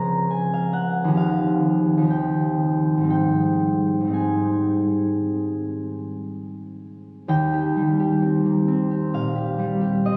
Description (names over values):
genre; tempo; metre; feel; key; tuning
classical, solo harp piece; 56-71 BPM; 4/4; rubato; Ab major; A4 = 440 Hz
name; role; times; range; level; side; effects
concert harp; solo; 0.0-10.2 s; Db2 to Bb5; -22 LUFS; equal; none
room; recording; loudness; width
wet church reverb, RT60 3.8 s; recorded on a phone in the room, club reverb; -22 LUFS; mono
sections
0.0-7.3 A section; 7.3-10.2 B section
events
none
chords
0.0 Dbmaj7; 1.2 Eb69; 3.1 Abmaj7; 7.3 Eb6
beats
0.29 1.15 2.09 | 3.09 4.12 5.17 6.24 | 7.28 8.21 9.12 10.04